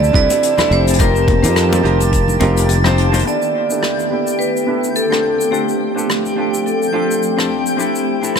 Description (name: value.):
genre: sunset chillout.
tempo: 106 BPM.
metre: 4/4.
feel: swing 55% on 16ths.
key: A minor.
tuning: A4 = 444 Hz.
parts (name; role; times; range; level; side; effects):
vibraphone with hard mallets; melody; 0.0-7.5 s; G4 to D5; -19 LUFS; right 2 dB; digital delay.
hollow-body jazz guitar; accompaniment; 0.0-8.4 s; B3 to C5; -21 LUFS; moving between left 7 dB and right 6 dB; auto-pan, low-pass filter, digital delay.
shimmering ambient pad; sustained chords; 0.0-8.4 s; D3 to G4; -21 LUFS; left 2 dB; chorus, built-in reverb.
sustaining fretless electric bass; bass; 0.0-3.2 s; F1 to F2; -15 LUFS; equal; none.
vintage brush drum kit; drums; 0.0-8.4 s; hi-hat, rim click, shaker; -23 LUFS; left 2 dB; none.
congas; percussion; 0.0-3.2 s; none; -24 LUFS; left 4 dB; none.
twinkling granular texture; texture; 0.0-8.4 s; G5 to A5; -26 LUFS; left 1 dB; built-in reverb.
electronic kick drum; drums; 0.1-2.3 s; none; -15 LUFS; equal; overdrive.
room: light reverb, studio ambience.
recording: none.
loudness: -13 LUFS.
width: side -6 dB against mid.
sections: 0.0-3.3 A section; 3.3-8.4 B section.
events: filter sweep on hollow-body jazz guitar 3.3-8.4; filter sweep on ambient pad 3.3-8.4.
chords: 0.0 D9sus4; 1.0 F9sus4; 3.3 A9sus4; 5.2 G9sus4; 7.8 D9sus4.